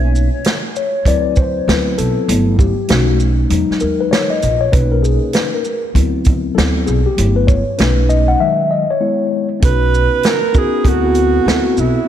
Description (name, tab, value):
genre	hip hop, jazz-hop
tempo	98 BPM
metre	4/4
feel	swing 63% on 16ths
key	B major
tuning	A4 = 439 Hz
part	mellow tine electric piano	accompaniment	0.0-12.1 s	D#3 to F#5	-16 LUFS	left 4 dB	slow stereo tremolo
part	upright bass	bass	0.0-11.9 s	G1 to E2	-16 LUFS	right 1 dB	none
part	vintage drum kit	drums	0.2-12.0 s	hi-hat, kick drum, shaker, snare drum	-16 LUFS	right 1 dB	none
part	breathy alto saxophone	melody	9.7-12.1 s	E4 to B4	-16 LUFS	right 8 dB	ping-pong delay
room	moderate lush hall reverb, RT60 2.4 s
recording	dreamy mix soaked in reverb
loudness	-12 LUFS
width	side -10 dB against mid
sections	0.0-9.6 A section; 9.6-12.1 B section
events	tine electric piano solo 0.0-9.6; break 8.4-9.6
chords	0.0 Bmaj7; 1.1 D13; 2.3 Gmaj13; 2.9 B9; 3.5 Emaj9; 4.7 Bmaj7; 6.0 D13; 7.2 Gmaj13; 7.8 B9; 8.4 Emaj9; 9.0 E6/G#; 9.6 Bmaj7; 10.9 D13